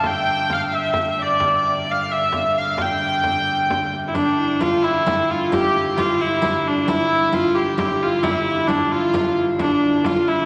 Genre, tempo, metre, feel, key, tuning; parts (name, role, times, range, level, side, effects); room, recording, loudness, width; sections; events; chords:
medieval dance; 88 BPM (dotted quarters); 6/8; straight; A4 = 437 Hz
clear hurdy-gurdy; melody; 0.0-10.5 s; D4 to G5; -21 LUFS; equal
bright fiddle; second line; 0.0-10.5 s; D4 to G5; -32 LUFS; equal
marimba with medium mallets; second line; 0.0-10.5 s; D4 to G5; -30 LUFS; equal
chamber organ, flutes; drone; 0.0-10.5 s; G2 to D3; -33 LUFS; equal
frame drum; percussion; 0.0-10.4 s; -33 LUFS; equal
riq; percussion; 4.1-10.4 s; -32 LUFS; equal
wet cathedral reverb, RT60 5.8 s; vinyl crackle; -20 LUFS; mono
0.0-4.1 A section; 4.1-10.5 A section